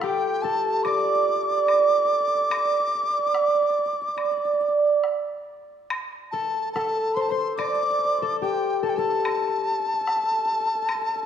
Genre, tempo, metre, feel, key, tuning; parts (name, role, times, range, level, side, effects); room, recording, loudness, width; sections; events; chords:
chinese traditional, Chinese chamber ensemble; 72 BPM; 4/4; rubato; D yu mode; A4 = 440 Hz
mellow large dizi; melody; 0.0-11.3 s; G5 to D6; -24 LUFS; left 2 dB
concert harp; second line; 0.0-11.3 s; F4 to D5; -28 LUFS; left 5 dB
hammered dulcimer; second line; 0.0-11.3 s; F4 to D5; -25 LUFS; right 6 dB
woodblock; percussion; 0.0-11.1 s; -34 LUFS; left 2 dB
moderate scoring stage reverb, RT60 2.1 s; -21 LUFS; side -9 dB against mid
0.0-5.9 A section; 5.9-11.3 B section